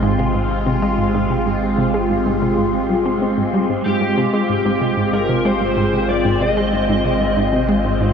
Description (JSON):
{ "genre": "ambient", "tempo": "94 BPM", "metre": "4/4", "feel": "straight", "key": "Ab major", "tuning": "A4 = 440 Hz", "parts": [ { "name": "phased analog pad", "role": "sustained chords", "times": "0.0-8.1 s", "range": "Ab3 to F4", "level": "-19 LUFS", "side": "equal", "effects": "phaser, chorus, shimmer reverb" }, { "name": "analog pluck", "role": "riff", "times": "0.0-8.1 s", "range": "Ab2 to C4", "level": "-21 LUFS", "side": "equal", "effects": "chorus, ping-pong delay" }, { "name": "round analog bass", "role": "bass", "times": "0.0-8.1 s", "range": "Ab1", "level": "-26 LUFS", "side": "equal", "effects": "none" }, { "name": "wind-like tuned noise texture", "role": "texture", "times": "0.0-8.1 s", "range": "C4 to C6", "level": "-29 LUFS", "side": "equal", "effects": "built-in reverb, wide subtle chorus, shimmer reverb" }, { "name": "lead guitar through a small cranked amp", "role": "melody", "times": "3.9-7.6 s", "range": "G4 to Eb5", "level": "-20 LUFS", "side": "left 1 dB", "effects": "overdrive, analog chorus, shimmer reverb, ping-pong delay" } ], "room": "wet huge ambient reverb, RT60 8.0 s", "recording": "dreamy mix soaked in reverb", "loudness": "-15 LUFS", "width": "side -7 dB against mid", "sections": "0.0-8.1 A section", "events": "none", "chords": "0.0 Ab" }